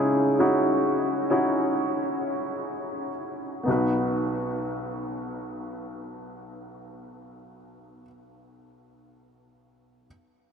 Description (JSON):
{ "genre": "pop", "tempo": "free time", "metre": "none", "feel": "none", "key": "B major", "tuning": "A4 = 443 Hz", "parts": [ { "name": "warm baby grand piano", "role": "accompaniment", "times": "0.0-10.1 s", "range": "B1 to B4", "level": "-24 LUFS", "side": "equal", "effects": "none" } ], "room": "wet huge ambient reverb, RT60 8.7 s", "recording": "dreamy mix soaked in reverb", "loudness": "-24 LUFS", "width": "side -7 dB against mid", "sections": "0.0-3.7 A section; 3.7-7.6 B section", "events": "slowing down 0.0-3.7", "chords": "0.0 C#madd9; 3.7 B" }